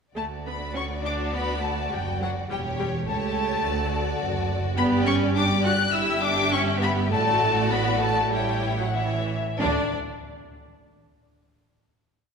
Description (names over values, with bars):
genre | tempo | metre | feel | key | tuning
quick classical-period movement for string orchestra | 91-107 BPM | 4/4 | rubato | D major | A4 = 440 Hz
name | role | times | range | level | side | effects
warm studio violin section | melody | 0.2-9.9 s | D5 to F#6 | -27 LUFS | left 3 dB | none
rich symphonic violin section | second line | 0.2-9.9 s | D4 to E5 | -30 LUFS | left 3 dB | none
rich chamber viola section | accompaniment | 0.2-9.9 s | E3 to F#4 | -28 LUFS | right 2 dB | none
clear studio double bass section | bass | 0.2-9.9 s | E1 to D2 | -30 LUFS | right 3 dB | none
warm symphonic cello section | bass | 0.2-9.9 s | C#2 to D3 | -31 LUFS | right 2 dB | none
room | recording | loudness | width
wet concert hall reverb, RT60 2.1 s | minimal, uncompressed stereo recording | -22 LUFS | side -6 dB against mid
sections
0.2-9.6 A section; 9.6-12.1 final note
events
slowing down 3.6-9.6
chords
0.2 D; 2.5 A7/E; 3.6 D; 4.8 G5; 5.9 Em/G; 7.1 D/A; 8.3 A; 9.6 N.C.